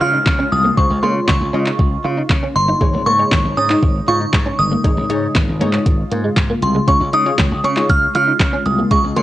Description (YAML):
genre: dance-pop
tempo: 118 BPM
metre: 4/4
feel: straight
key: Db major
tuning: A4 = 440 Hz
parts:
  - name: glassy synth bell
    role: melody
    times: 0.0-9.2 s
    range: C6 to F6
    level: -18 LUFS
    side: right 1 dB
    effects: chorus, phaser, cassette tape
  - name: analog pluck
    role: accompaniment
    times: 0.0-9.2 s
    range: Ab3 to Eb5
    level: -23 LUFS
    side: left 2 dB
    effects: chorus, sidechain pumping
  - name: glassy FM pad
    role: sustained chords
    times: 0.0-9.2 s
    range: Db3 to F4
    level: -26 LUFS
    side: left 2 dB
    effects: ensemble chorus, built-in reverb, sidechain pumping
  - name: direct-recorded clean electric guitar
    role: riff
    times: 0.0-9.2 s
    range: Ab3 to F4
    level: -22 LUFS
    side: right 2 dB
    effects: ensemble chorus
  - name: slap bass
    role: bass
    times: 0.0-9.2 s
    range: G1 to Db3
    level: -21 LUFS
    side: equal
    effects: sidechain pumping
  - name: downlifter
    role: sound effects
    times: 0.0-2.8 s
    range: none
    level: -37 LUFS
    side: equal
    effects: none
  - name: smooth R&B drum kit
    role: drums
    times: 0.3-9.2 s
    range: handclaps, hi-hat, kick drum, snare drum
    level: -16 LUFS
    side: equal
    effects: cassette tape
room: little or no reverb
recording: home recording on cassette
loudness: -13 LUFS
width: side -14 dB against mid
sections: 0.0-9.2 A section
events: none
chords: 0.0 Db